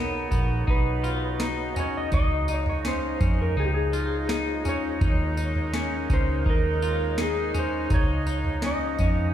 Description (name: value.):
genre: dream pop.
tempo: 83 BPM.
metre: 4/4.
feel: straight.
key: unclear.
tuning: A4 = 440 Hz.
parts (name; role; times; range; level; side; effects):
clean lap steel guitar; melody; 0.0-9.3 s; G4 to D#5; -30 LUFS; equal; tape echo.
warm woodwind section; sustained chords; 0.0-9.3 s; Db3 to D#4; -32 LUFS; right 2 dB; none.
semi-hollow electric guitar; arpeggios; 0.0-9.3 s; B3 to F4; -32 LUFS; left 5 dB; wide subtle chorus, tape echo.
vintage muted fingered electric bass; bass; 0.0-9.3 s; Bb1 to F2; -28 LUFS; equal; none.
drifting glass-harmonics texture; texture; 0.3-8.2 s; F4 to C6; -40 LUFS; equal; none.
booming analog drum machine; drums; 0.3-9.2 s; kick drum, snare drum, tambourine, toms; -26 LUFS; equal; overdrive.
room: little or no reverb.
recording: played on a big sound system in a bare room, stone room reverb.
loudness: -22 LUFS.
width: side -10 dB against mid.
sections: 0.0-9.3 A section.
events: none.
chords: 0.0 Badd9; 2.1 Dbadd9.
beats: 0.68 1.40 | 2.13 2.85 3.57 4.29 | 5.02 5.74 6.46 7.19 | 7.91 8.63.